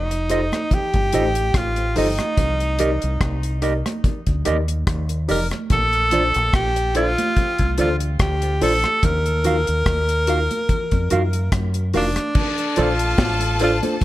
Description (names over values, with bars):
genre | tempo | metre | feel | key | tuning
lovers rock reggae | 72 BPM | 4/4 | swing 55% on 16ths | Bb major | A4 = 439 Hz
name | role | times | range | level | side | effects
clear tenor saxophone | melody | 0.0-13.8 s | D4 to Bb4 | -22 LUFS | equal | tape echo
deep dub fingered electric bass | bass | 0.0-14.0 s | F1 to Gb2 | -22 LUFS | equal | none
mellow electric guitar | stabs | 0.1-13.9 s | F4 to F5 | -25 LUFS | right 5 dB | warbly pitch drift
deep reggae drum kit | drums | 0.1-14.0 s | crash cymbal, hi-hat, kick drum, rim click, snare drum | -22 LUFS | equal | none
tine electric piano | accompaniment | 0.3-14.0 s | D4 to D5 | -28 LUFS | left 3 dB | fast stereo tremolo, tape echo
congas | percussion | 0.5-14.0 s | none | -32 LUFS | right 4 dB | tape echo
rich studio string section | second line | 12.3-14.0 s | A4 to A5 | -26 LUFS | left 1 dB | tape echo
room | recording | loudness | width
light reverb, small room reverb | none | -17 LUFS | side -15 dB against mid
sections
0.0-12.4 A section; 12.4-14.0 B section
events
none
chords
0.0 F7; 2.4 Cm7; 5.7 Bbmaj7; 9.0 Ebmadd9; 12.4 Bbmaj7